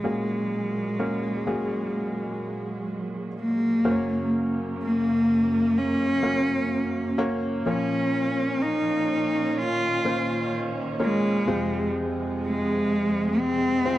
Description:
pop ballad; 63 BPM; 4/4; straight; A4 = 436 Hz
rich cello; melody; 0.0-14.0 s; Ab3 to F4; -25 LUFS; equal; slapback echo
clear concert grand piano; accompaniment; 0.0-14.0 s; F2 to Db5; -29 LUFS; left 1 dB
rich studio string section; sustained chords; 0.0-14.0 s; F2 to Db4; -31 LUFS; right 2 dB
wet booth ambience, RT60 0.2 s; dry, close 1970s-style studio recording; -23 LUFS; side -14 dB against mid
0.0-3.9 A section; 3.9-14.0 B section
0.0 Gbadd9/Bb; 3.9 Gb; 7.7 Bbm; 11.5 Fm
| 0.05 1.00 1.95 2.91 | 3.86 4.81 5.76 6.71 | 7.67 8.62 9.57 10.53 | 11.48 12.43 13.38

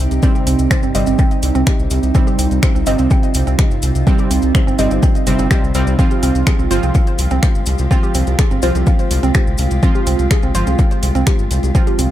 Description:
melodic techno; 125 BPM; 4/4; straight; C minor; A4 = 440 Hz
evolving wavetable pad; sustained chords; 0.0-12.1 s; C3 to G4; -23 LUFS; right 3 dB; chorus, built-in reverb, sidechain pumping
synth brass stab; stabs; 0.0-12.1 s; C3 to F4; -22 LUFS; right 3 dB; chorus, sidechain pumping, dub echo
round analog bass; bass; 0.0-12.1 s; G1 to C2; -17 LUFS; equal; sidechain pumping
techno drum kit; drums; 0.1-12.1 s; finger snaps, hi-hat; -25 LUFS; equal; overdrive, dub echo
maracas; percussion; 0.1-12.1 s; -31 LUFS; left 5 dB
woody wave-folded pluck; arpeggios; 0.2-12.1 s; C4 to G5; -23 LUFS; right 1 dB; chorus, sidechain pumping, dub echo
electronic kick drum; drums; 0.2-11.8 s; -14 LUFS; equal; overdrive
digital ambience; echo-heavy mix; -12 LUFS; side -12 dB against mid
0.0-12.1 A section
0.0 Cm; 6.0 Fmadd9
| 0.23 0.71 1.19 1.67 | 2.15 2.63 3.11 3.59 | 4.07 4.55 5.03 5.51 | 5.99 6.47 6.95 7.43 | 7.91 8.39 8.87 9.35 | 9.83 10.31 10.79 11.27 | 11.75

